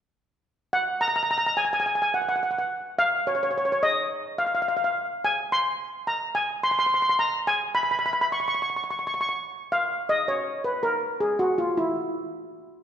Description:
calypso; 107 BPM; 4/4; straight; A4 = 439 Hz
steel pan; solo; 0.7-12.8 s; E4 to C#6; -23 LUFS; equal
wet recital hall reverb, RT60 1.7 s; recorded in a church or concert hall, nothing above 10.7 kHz; -23 LUFS; side -9 dB against mid
0.7-9.7 A section; 9.7-12.8 B section
steel pan solo 9.7-12.8
0.17 | 0.73 1.29 1.86 2.42 | 2.98 3.54 4.10 4.66 | 5.23 5.79 6.35 6.91 | 7.47 8.04 8.60 9.16 | 9.73 10.29 10.85 11.42 | 11.98 12.55

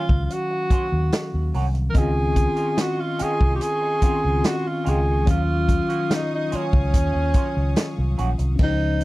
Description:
lush 1970s-style soul; 72 BPM; 4/4; straight; A4 = 439 Hz
warm tenor saxophone; melody; 0.0-9.0 s; Db4 to Bb4; -25 LUFS; right 1 dB
mellow tine electric piano; accompaniment; 0.0-9.0 s; Eb3 to F5; -27 LUFS; left 2 dB; slow stereo tremolo
electric guitar through a small old amp; riff; 0.0-9.0 s; Eb3 to Gb4; -33 LUFS; right 5 dB; wah
vintage muted fingered electric bass; bass; 0.1-9.0 s; Bb1 to Eb2; -22 LUFS; equal
vintage drum kit; drums; 0.1-9.0 s; crash cymbal, hi-hat, kick drum, snare drum; -21 LUFS; equal
warm studio string section; sustained chords; 2.0-8.6 s; Gb3 to Eb6; -38 LUFS; left 1 dB
studio reverb; dry, close 1970s-style studio recording; -19 LUFS; side -18 dB against mid
0.0-8.6 A section
0.0 Ebm9; 2.0 Dbmaj9; 5.3 Ebm9
0.29 1.12 | 1.95 2.78 3.61 4.44 | 5.27 6.10 6.93 7.76 | 8.59

